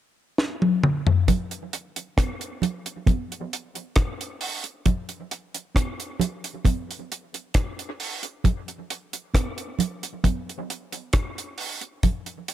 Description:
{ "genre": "reggae", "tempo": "67 BPM", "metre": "4/4", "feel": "straight", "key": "none", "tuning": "none", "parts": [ { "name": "deep reggae drum kit", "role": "drums", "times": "0.4-12.5 s", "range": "hi-hat, kick drum, rim click, snare drum, toms", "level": "-23 LUFS", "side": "left 1 dB", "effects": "none" }, { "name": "congas", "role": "percussion", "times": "1.3-12.3 s", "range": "none", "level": "-28 LUFS", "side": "right 7 dB", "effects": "dub echo" } ], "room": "light reverb", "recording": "none", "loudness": "-24 LUFS", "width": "side -12 dB against mid", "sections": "0.0-1.3 A section; 1.3-12.5 B section", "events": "drum fill 0.4-1.3", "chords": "none" }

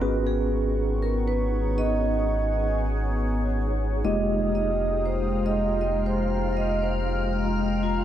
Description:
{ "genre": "house", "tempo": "119 BPM", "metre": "4/4", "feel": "swing 60% on 16ths", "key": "F minor", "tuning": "A4 = 441 Hz", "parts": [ { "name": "vibraphone with medium hard mallets", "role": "melody", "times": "0.0-8.0 s", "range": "F4 to Eb5", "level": "-29 LUFS", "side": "right 2 dB", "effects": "tape echo" }, { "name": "warm analog pad", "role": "sustained chords", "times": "0.0-8.0 s", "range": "Ab3 to F6", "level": "-31 LUFS", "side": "left 2 dB", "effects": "chorus" }, { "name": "mellow tine electric piano", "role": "stabs", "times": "0.0-8.0 s", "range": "Ab3 to Cb5", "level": "-30 LUFS", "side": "equal", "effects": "medium stereo tremolo, tape echo" }, { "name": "smooth gliding synth bass", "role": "bass", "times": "0.0-8.0 s", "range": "F1 to Ab1", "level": "-27 LUFS", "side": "equal", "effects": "none" }, { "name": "granular cloud pad", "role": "texture", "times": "0.0-8.0 s", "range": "Eb4 to Bb5", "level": "-33 LUFS", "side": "right 1 dB", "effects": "built-in reverb" }, { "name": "soft string machine", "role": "texture", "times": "4.0-8.0 s", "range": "F5 to F6", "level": "-38 LUFS", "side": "right 1 dB", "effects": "phaser, ensemble chorus" } ], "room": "light reverb", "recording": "none", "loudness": "-23 LUFS", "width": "side -11 dB against mid", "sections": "0.0-8.0 A section", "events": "none", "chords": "0.0 Abm11; 4.0 Fm11" }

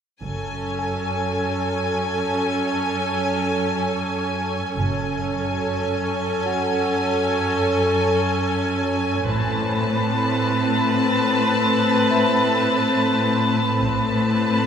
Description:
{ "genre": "cinematic, suspense film score", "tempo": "53 BPM", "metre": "4/4", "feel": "straight", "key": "F# minor", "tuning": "A4 = 442 Hz", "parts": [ { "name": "clear studio violin section", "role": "melody", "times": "0.2-14.7 s", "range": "G#5 to A5", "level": "-26 LUFS", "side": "left 3 dB", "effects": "none" }, { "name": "rich studio viola section", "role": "accompaniment", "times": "0.2-14.7 s", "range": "C4 to B4", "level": "-23 LUFS", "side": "equal", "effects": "none" }, { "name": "glassy FM pad", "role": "sustained chords", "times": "0.6-14.7 s", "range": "C4 to B5", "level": "-26 LUFS", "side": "right 2 dB", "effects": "ensemble chorus, built-in reverb" }, { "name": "clear studio cello section", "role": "bass", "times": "0.2-14.7 s", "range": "F#2 to A2", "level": "-25 LUFS", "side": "equal", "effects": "none" }, { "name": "rich studio double bass section", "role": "bass", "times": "0.2-14.7 s", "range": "F#1 to A1", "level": "-29 LUFS", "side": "right 2 dB", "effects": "none" }, { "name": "celesta", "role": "texture", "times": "0.8-14.7 s", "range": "F#4 to G#5", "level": "-33 LUFS", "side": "left 2 dB", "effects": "none" } ], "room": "wet church reverb, RT60 2.8 s", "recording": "recorded in a church or concert hall", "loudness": "-19 LUFS", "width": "side -8 dB against mid", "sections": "0.2-14.7 A section", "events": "none", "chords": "0.2 F#madd9; 9.3 Amadd9" }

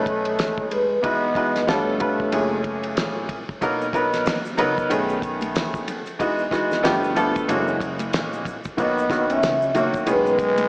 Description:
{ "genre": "hip hop, jazz-hop", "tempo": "93 BPM", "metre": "4/4", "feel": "swing 58% on 16ths", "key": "B major", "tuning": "A4 = 437 Hz", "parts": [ { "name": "vibraphone with soft mallets", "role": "melody", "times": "0.0-3.3, 8.8-10.7 s", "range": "B4 to E5", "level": "-23 LUFS", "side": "equal", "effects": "analog delay" }, { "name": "growling trombone", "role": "second line", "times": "0.0-3.3, 8.8-10.7 s", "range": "G#3 to C#4", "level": "-26 LUFS", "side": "equal", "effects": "analog delay" }, { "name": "bright upright piano", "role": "accompaniment", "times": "0.0-10.7 s", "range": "A#2 to B4", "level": "-22 LUFS", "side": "equal", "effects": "none" }, { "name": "upright bass", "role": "bass", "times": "0.0-10.7 s", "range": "F#1 to E2", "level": "-35 LUFS", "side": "equal", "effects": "none" }, { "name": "cloth-damped thuddy drum kit", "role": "drums", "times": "0.1-10.7 s", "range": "hi-hat, kick drum, ride cymbal, snare drum", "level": "-28 LUFS", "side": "equal", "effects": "vintage 12-bit sampler grit" }, { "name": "egg shaker and congas", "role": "percussion", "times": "3.6-10.7 s", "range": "none", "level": "-37 LUFS", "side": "equal", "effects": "none" } ], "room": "wet plate reverb, RT60 2.6 s", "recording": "dreamy mix soaked in reverb, small speaker sound", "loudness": "-19 LUFS", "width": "side -29 dB against mid", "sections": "0.0-10.7 A section", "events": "none", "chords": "0.0 B13; 1.0 Emaj9; 1.7 G9; 2.3 F#9; 3.6 Bmaj7; 4.9 B13; 6.2 Emaj9; 6.8 G9; 7.5 F#9; 8.8 Bmaj7; 10.1 B69" }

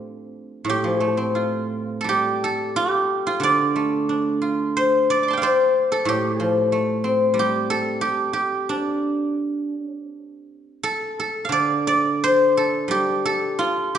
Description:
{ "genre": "chinese traditional, Chinese solo plucked strings", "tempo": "80-96 BPM", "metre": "4/4", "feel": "rubato", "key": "D yu mode", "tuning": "A4 = 438 Hz", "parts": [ { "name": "guzheng", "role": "solo", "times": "0.0-14.0 s", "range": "A2 to D6", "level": "-19 LUFS", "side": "equal", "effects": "none" } ], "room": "wet recital hall reverb, RT60 1.7 s", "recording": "recorded in a church or concert hall, nothing above 10.5 kHz", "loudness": "-19 LUFS", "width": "side -9 dB against mid", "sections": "0.0-11.5 A section; 11.5-14.0 B section", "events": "none", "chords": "none" }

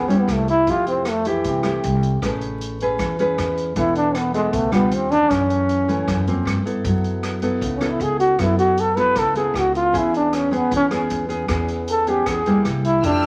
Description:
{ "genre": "bossa nova", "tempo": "156 BPM", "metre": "4/4", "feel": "straight", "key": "unclear", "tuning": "A4 = 444 Hz", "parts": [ { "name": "clear trombone", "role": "melody", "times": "0.0-13.3 s", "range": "E3 to B4", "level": "-21 LUFS", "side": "equal", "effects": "none" }, { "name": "nylon-string guitar", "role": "accompaniment", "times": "0.0-13.3 s", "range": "F#2 to B4", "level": "-24 LUFS", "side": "equal", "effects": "none" }, { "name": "upright bass", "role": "bass", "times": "0.0-13.3 s", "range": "E1 to G2", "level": "-29 LUFS", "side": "equal", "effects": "none" }, { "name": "swinging big-band drum kit", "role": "drums", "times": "0.1-13.3 s", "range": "hi-hat, kick drum, rim click", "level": "-34 LUFS", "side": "equal", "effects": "none" }, { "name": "warm symphonic violin section", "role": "sustained chords", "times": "13.0-13.3 s", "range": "A3 to F6", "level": "-27 LUFS", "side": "equal", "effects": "none" } ], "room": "moderate large studio reverb, RT60 1.2 s", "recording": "vinyl crackle", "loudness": "-20 LUFS", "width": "mono", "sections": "0.0-13.3 A section", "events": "trombone solo 0.0-13.3", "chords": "0.3 C7; 0.7 Fmaj9; 2.2 Amaj9; 3.8 E7sus4; 4.9 D#maj9; 5.3 F#7#9; 6.5 Gm11; 6.8 F#m7; 9.9 E6; 12.6 C7" }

